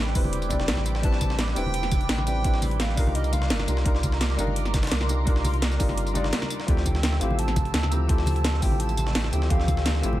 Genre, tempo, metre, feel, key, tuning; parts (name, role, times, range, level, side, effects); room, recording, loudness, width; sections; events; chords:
liquid drum and bass; 170 BPM; 4/4; straight; D minor; A4 = 438 Hz
felt-muted upright piano; accompaniment; 0.0-10.2 s; E3 to D5; -30 LUFS; left 2 dB; tape echo
airy breathy pad; sustained chords; 0.0-10.2 s; C4 to E6; -36 LUFS; right 2 dB; chorus, phaser, vintage 12-bit sampler grit, sidechain pumping
warm sub bass; bass; 0.0-10.2 s; E1 to D2; -26 LUFS; equal
breakbeat sampler-style drum kit; drums; 0.1-10.1 s; hi-hat, snare drum; -36 LUFS; equal; high-pass filter on hats, high-pass filter on snare
drum and bass drum kit; drums; 0.2-10.1 s; hi-hat, snare drum, tambourine; -30 LUFS; equal
electronic kick drum; drums; 0.2-9.8 s; -24 LUFS; equal
congas; percussion; 0.2-10.2 s; -34 LUFS; equal
hollow clarinet-like synth lead; melody; 1.0-3.7, 6.9-10.2 s; Eb5 to Bb5; -33 LUFS; right 1 dB; chorus, phaser, dub echo
little or no reverb; -22 LUFS; side -14 dB against mid
0.0-10.2 A section
0.0 Am11; 3.0 Cm11; 6.7 Dm11